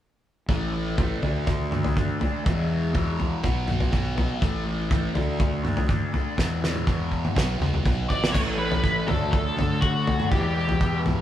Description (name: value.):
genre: psychedelic rock.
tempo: 122 BPM.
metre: 4/4.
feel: straight.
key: E dorian.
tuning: A4 = 440 Hz.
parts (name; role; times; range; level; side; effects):
fuzz guitar; riff; 0.5-11.2 s; E2 to D4; -28 LUFS; left 1 dB; distortion, phaser.
fuzz fingered electric bass; bass; 0.5-11.2 s; A1 to D3; -28 LUFS; equal; overdrive.
damped 70s drum kit; drums; 0.5-11.2 s; crash cymbal, kick drum, snare drum, toms; -25 LUFS; equal; none.
octave-fuzz lead guitar; melody; 8.1-11.0 s; F#4 to D5; -27 LUFS; left 2 dB; wah, distortion.
tonewheel organ; sustained chords; 8.3-11.2 s; E3 to B4; -36 LUFS; right 3 dB; slow rotary speaker.
room: moderate stone room reverb, RT60 1.2 s.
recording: band playing live in one room.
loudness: -22 LUFS.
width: side -11 dB against mid.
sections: 0.5-8.3 A section; 8.3-11.2 B section.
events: drum fill 6.4-8.3.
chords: 0.5 A5; 1.2 D5; 2.5 E5; 3.4 B5; 4.4 A5; 5.2 D5; 6.4 E5; 7.4 B5; 8.3 A; 9.1 D; 10.3 Em.